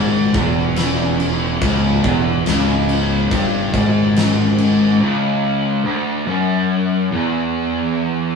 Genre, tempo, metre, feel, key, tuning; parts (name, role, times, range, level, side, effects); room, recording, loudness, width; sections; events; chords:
stoner and doom metal; 71 BPM; 4/4; straight; A4 = 440 Hz
fuzz guitar; riff; 0.0-8.4 s; C#2 to G#2; -16 LUFS; left 1 dB; distortion
fuzz fingered electric bass; bass; 0.0-5.0 s; C#1 to G#1; -23 LUFS; right 2 dB; overdrive
big rock drum kit; drums; 0.3-4.8 s; crash cymbal, kick drum, snare drum; -21 LUFS; equal
moderate studio reverb, RT60 0.6 s; band playing live in one room, studio ambience; -15 LUFS; side -5 dB against mid
0.0-8.4 A section
break 5.0-8.4
0.0 C#m